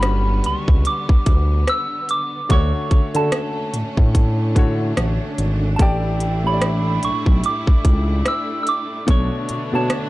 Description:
contemporary R&B; 73 BPM; 4/4; swing 58% on 16ths; A4 = 441 Hz
soft synth bell; melody; 0.0-10.1 s; G5 to E6; -24 LUFS; right 2 dB; chorus, phaser, tape echo
warm baby grand piano; accompaniment; 0.0-10.1 s; A2 to D5; -27 LUFS; left 2 dB
clear studio string section; sustained chords; 0.0-10.1 s; D3 to E4; -29 LUFS; right 1 dB
smooth gliding synth bass; bass; 0.0-9.9 s; G1 to D3; -20 LUFS; equal
trap drum kit; drums; 0.0-10.1 s; hi-hat, kick drum, rim click; -16 LUFS; equal
little or no reverb; dry, gritty hardware recording, cassette tape; -16 LUFS; side -18 dB against mid
0.0-10.1 A section
0.0 Gmaj7; 2.5 Dmaj7; 5.8 A7sus4; 9.1 Bm9
0.04 0.86 1.68 | 2.50 3.32 4.14 4.97 | 5.79 6.61 7.43 8.25 | 9.08 9.90

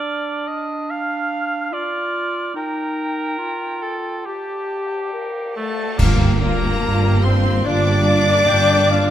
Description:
cinematic, emotional film score for orchestra; 72 BPM; 4/4; rubato; G minor; A4 = 440 Hz
bright clarinet; second line; 0.0-9.1 s; D4 to G5; -26 LUFS; left 1 dB
silver concert flute; second line; 0.0-9.1 s; A4 to F6; -24 LUFS; left 2 dB
warm cor anglais; second line; 0.0-9.1 s; A3 to F5; -26 LUFS; right 2 dB
cymbal swell, clash cymbals and concert bass drum; percussion; 2.5-7.6 s; -22 LUFS; equal
rich studio violin section; melody; 5.6-9.1 s; A5 to D6; -24 LUFS; left 2 dB
rich studio viola section; accompaniment; 5.6-9.1 s; A3 to D4; -24 LUFS; equal
rich studio violin section; second line; 6.0-9.1 s; Bb3 to G4; -29 LUFS; left 4 dB
warm French horn section; sustained chords; 6.0-9.1 s; Bb3 to F4; -26 LUFS; left 3 dB
rich studio double bass section; bass; 6.0-9.1 s; G1; -20 LUFS; right 1 dB
warm studio cello section; bass; 6.0-9.1 s; G2; -21 LUFS; right 2 dB
moderate scoring stage reverb, RT60 1.6 s; -17 LUFS; side -11 dB against mid
0.0-6.0 A section; 6.0-9.1 A section
band accent 6.0-6.8
0.0 Dm; 2.5 Eb; 4.3 Gsus2; 6.0 Gm7
0.06 0.89 1.73 | 2.55 3.38 4.25 5.13 | 5.99 6.82 7.66 8.49

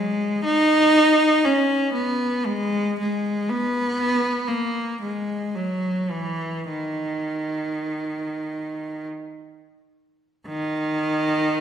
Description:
classical, free, expressive piece for unaccompanied cello; 37-62 BPM; 3/4; rubato; A4 = 438 Hz
rich cello; solo; 0.0-11.6 s; D#3 to D#4; -20 LUFS; equal
wet recital hall reverb, RT60 1.6 s; recorded in a church or concert hall; -20 LUFS; side -8 dB against mid
0.0-10.5 A section; 10.5-11.6 B section
| 0.45 1.44 2.46 | 3.47 4.48 5.54 | 6.69 7.86 9.09 | 10.48 11.59

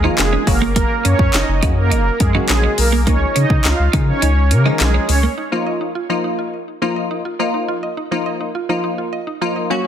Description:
dance-pop; 104 BPM; 4/4; straight; Eb minor; A4 = 440 Hz
wavetable chord stab; accompaniment; 0.0-9.9 s; Db3 to Gb4; -21 LUFS; left 2 dB; sidechain pumping
twelve-string electric guitar; riff; 0.0-5.3 s; Bb3 to Eb4; -23 LUFS; right 7 dB; lush chorus
warm sub bass; bass; 0.0-5.3 s; F1 to Db3; -16 LUFS; equal; sidechain pumping
filtered supersaw swell; melody; 0.2-5.2 s; Ab3 to F5; -20 LUFS; right 3 dB; ping-pong delay
house drum kit; drums; 0.2-5.2 s; handclaps, hi-hat, kick drum, snare drum; -18 LUFS; left 1 dB; overdrive
mallet-like synth pluck; arpeggios; 5.4-9.9 s; Gb3 to Eb5; -26 LUFS; right 4 dB; chorus, sidechain pumping, ping-pong delay
light reverb; dense, heavily limited modern master; -14 LUFS; side -9 dB against mid
0.0-5.4 A section; 5.4-9.9 B section
drop 0.0-5.4; kick muted 4.2-5.4
0.5 Gb; 3.1 Dbadd9; 5.4 Ebsus2
0.18 | 0.76 1.34 1.92 2.49 | 3.07 3.65 4.22 4.80 | 5.38 5.95 6.53 7.11 | 7.68 8.26 8.84 9.41

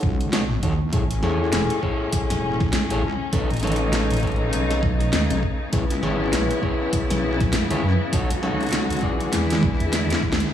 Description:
glitch hop; 100 BPM; 4/4; swing 59% on 16ths; C# minor; A4 = 437 Hz
electric guitar at the edge of break-up; stabs; 0.0-10.5 s; D#4 to D5; -26 LUFS; left 1 dB; vintage 12-bit sampler grit, sidechain pumping, low-pass filter, tape echo
wobble bass; bass; 0.0-10.5 s; E1 to F#2; -24 LUFS; equal; chorus, tube saturation
dubstep drum kit; drums; 0.0-10.5 s; hi-hat, snare drum; -27 LUFS; equal; small room ambience
electronic kick drum; drums; 0.0-10.4 s; -24 LUFS; equal; small room ambience
warm studio string section; sustained chords; 0.9-10.5 s; A2 to F#4; -27 LUFS; left 2 dB; sidechain pumping
light reverb; dry, gritty hardware recording, studio reverb; -20 LUFS; side -10 dB against mid
0.0-10.5 A section
drum fill 9.3-10.5; band accent 10.3
0.0 D#m7b5; 0.9 Amaj7; 3.3 B9; 5.7 C#m7; 8.1 D#m7b5; 9.3 E7
0.33 | 0.93 1.53 2.13 2.73 | 3.33 3.93 4.53 5.13 | 5.73 6.33 6.93 7.53 | 8.13 8.73 9.33 9.93

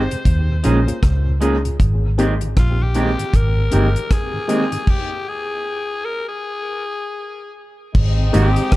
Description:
lovers rock reggae; 78 BPM; 4/4; swing 60% on 16ths; Ab major; A4 = 440 Hz
raspy alto saxophone; melody; 0.0-8.8 s; F4 to C5; -26 LUFS; left 2 dB; tape echo
FM electric piano with tremolo; accompaniment; 0.0-8.5 s; Bb3 to Ab4; -25 LUFS; left 2 dB; dub echo
vintage muted fingered electric bass; bass; 0.0-8.8 s; G1 to Eb2; -17 LUFS; equal
mellow tonewheel organ; accompaniment; 0.1-8.6 s; Eb2 to G4; -29 LUFS; left 1 dB
deep reggae drum kit; drums; 0.1-8.8 s; crash cymbal, hi-hat, kick drum, rim click; -19 LUFS; equal
electric guitar through a small old amp; stabs; 0.6-8.5 s; Eb3 to Ab4; -24 LUFS; right 3 dB
phased string machine; second line; 7.9-8.8 s; C4 to Eb5; -27 LUFS; left 1 dB; ensemble chorus, phaser
warm horn section; second line; 8.0-8.8 s; Ab3 to Eb4; -28 LUFS; left 1 dB
small room ambience; dark, warm production; -16 LUFS; side -18 dB against mid
0.0-8.0 A section
stop 4.9-8.0
0.3 Eb7sus4; 1.8 Abmaj7; 4.9 N.C.; 8.0 Abmaj7
0.25 1.02 | 1.79 2.56 3.33 4.10 | 4.87 5.64 6.41 7.18 | 7.95 8.72

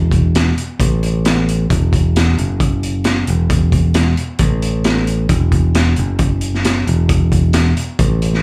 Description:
indie rock; 133 BPM; 4/4; straight; A4 = 442 Hz
modern bright picked electric bass; bass; 0.0-8.4 s; E1 to A1; -17 LUFS; equal
raw garage drum kit; drums; 0.1-8.4 s; hi-hat, kick drum, snare drum; -19 LUFS; equal
little or no reverb; live gig heard through the venue's PA, club reverb; -15 LUFS; mono
0.0-8.4 A section
0.34 0.79 1.24 | 1.69 2.14 2.59 3.04 | 3.49 3.94 4.39 4.84 | 5.29 5.74 6.19 6.64 | 7.09 7.54 7.99

